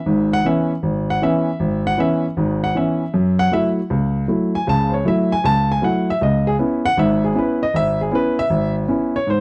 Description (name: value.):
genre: solo jazz.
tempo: 156 BPM.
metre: 4/4.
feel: swing 67% on 8ths.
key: C# minor.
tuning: A4 = 440 Hz.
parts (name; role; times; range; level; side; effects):
warm baby grand piano; solo; 0.0-9.4 s; G#1 to A5; -19 LUFS; equal; none.
room: small room reverb.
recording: dry, close 1970s-style studio recording.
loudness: -19 LUFS.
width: mono.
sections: 0.0-9.4 A section.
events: grand piano solo 0.0-9.4.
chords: 0.0 C#m7; 3.1 F#m7; 6.2 C#m7.